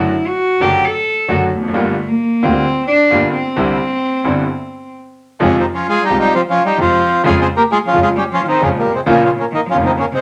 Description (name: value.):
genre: tango.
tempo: 132 BPM.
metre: 4/4.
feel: rubato.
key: F minor from 5.4 s.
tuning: A4 = 440 Hz.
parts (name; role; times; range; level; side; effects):
warm cello; second line; 0.0-10.2 s; Bb2 to A4; -20 LUFS; equal; none.
clear concert grand piano; accompaniment; 0.0-9.9 s; F1 to F#4; -20 LUFS; equal; none.
muted chamber string section; stabs; 0.0-9.9 s; Ab3 to G4; -26 LUFS; equal; none.
clear double bass; bass; 0.0-9.9 s; F1 to F2; -26 LUFS; equal; none.
bandoneon; melody; 5.4-10.2 s; G3 to C5; -17 LUFS; equal; none.
room: wet studio reverb, RT60 0.6 s.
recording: none.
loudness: -15 LUFS.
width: mono.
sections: 0.0-5.4 A section; 5.4-10.2 B section.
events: cello solo 0.0-5.4; stop 4.5-5.4.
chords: 0.0 D/F#; 1.7 Gm7; 3.6 Cadd9; 5.4 Fm; 7.2 Db/F; 9.1 Bbm.